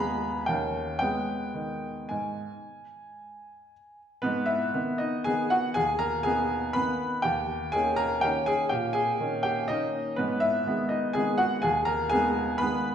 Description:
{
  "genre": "classical, piano waltz",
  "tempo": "107-131 BPM",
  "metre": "3/4",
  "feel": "rubato",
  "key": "G# minor",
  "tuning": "A4 = 439 Hz",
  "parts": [
    { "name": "clear upright piano", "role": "solo", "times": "0.0-12.9 s", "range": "D#2 to B5", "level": "-25 LUFS", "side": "equal", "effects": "none" }
  ],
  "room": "wet recital hall reverb, RT60 1.6 s",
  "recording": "heard from further back in the room",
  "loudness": "-25 LUFS",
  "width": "side -8 dB against mid",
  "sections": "0.0-4.2 A section; 4.2-12.9 B section",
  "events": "none",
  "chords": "0.5 D#7; 1.0 G#m; 7.3 D#7; 10.2 G#m"
}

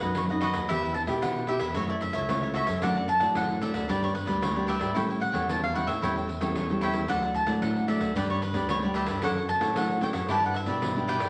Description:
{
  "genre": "samba and choro",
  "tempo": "113 BPM",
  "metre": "4/4",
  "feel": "straight",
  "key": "D major",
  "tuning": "A4 = 436 Hz",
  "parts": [
    { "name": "mandolin", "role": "melody", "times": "0.0-11.3 s", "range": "B4 to A5", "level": "-33 LUFS", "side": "equal", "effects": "none" },
    { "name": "cavaquinho", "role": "accompaniment", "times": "0.0-11.3 s", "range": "D4 to G5", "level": "-34 LUFS", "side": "equal", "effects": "none" },
    { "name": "nylon-string guitar", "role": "accompaniment", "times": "0.0-11.3 s", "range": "F#2 to A4", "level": "-34 LUFS", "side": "equal", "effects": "none" },
    { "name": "overdriven tine electric piano", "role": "bass", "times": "0.0-11.3 s", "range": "C#2 to B2", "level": "-35 LUFS", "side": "equal", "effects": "fast tremolo" },
    { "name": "pandeiro", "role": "percussion", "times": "0.0-11.3 s", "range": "none", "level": "-38 LUFS", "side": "equal", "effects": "none" }
  ],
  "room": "wet studio reverb, RT60 0.9 s",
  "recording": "none",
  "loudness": "-28 LUFS",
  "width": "mono",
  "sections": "0.0-11.3 A section",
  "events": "none",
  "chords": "0.0 B; 0.7 Em; 1.8 F#m7; 2.8 D/F#; 3.9 G; 5.0 A7; 7.1 D; 8.2 G; 9.2 Dmaj7/F#; 10.3 Em7/G"
}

